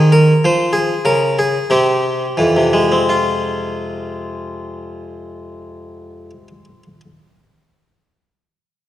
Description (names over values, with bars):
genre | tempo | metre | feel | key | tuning
classical, baroque-style suite movement for harpsichord | 42-51 BPM | 3/4 | rubato | F minor | A4 = 436 Hz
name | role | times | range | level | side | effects
harpsichord | solo | 0.0-7.0 s | F2 to C5 | -14 LUFS | equal | none
room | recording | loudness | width
wet concert hall reverb, RT60 1.9 s | none | -13 LUFS | side -12 dB against mid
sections
0.0-3.1 A section; 3.1-7.3 B section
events
slowing down 0.0-3.1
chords
0.0 Csus4; 1.7 C; 3.1 Fm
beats
0.43 1.69 | 3.09 4.51 5.92